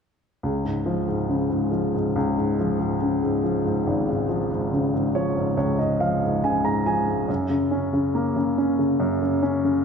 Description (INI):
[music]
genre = pop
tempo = 70 BPM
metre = 4/4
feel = straight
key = Db major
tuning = A4 = 441 Hz
[part]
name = clear baby grand piano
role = accompaniment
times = 0.4-9.8 s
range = Ab1 to Bb5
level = -21 LUFS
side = equal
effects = none
[sound]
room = wet scoring stage reverb, RT60 2.0 s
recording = dark, warm production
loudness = -21 LUFS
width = side -6 dB against mid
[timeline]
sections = 0.4-9.8 A section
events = grand piano fill 4.7-7.3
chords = 0.4 Db; 7.3 Gb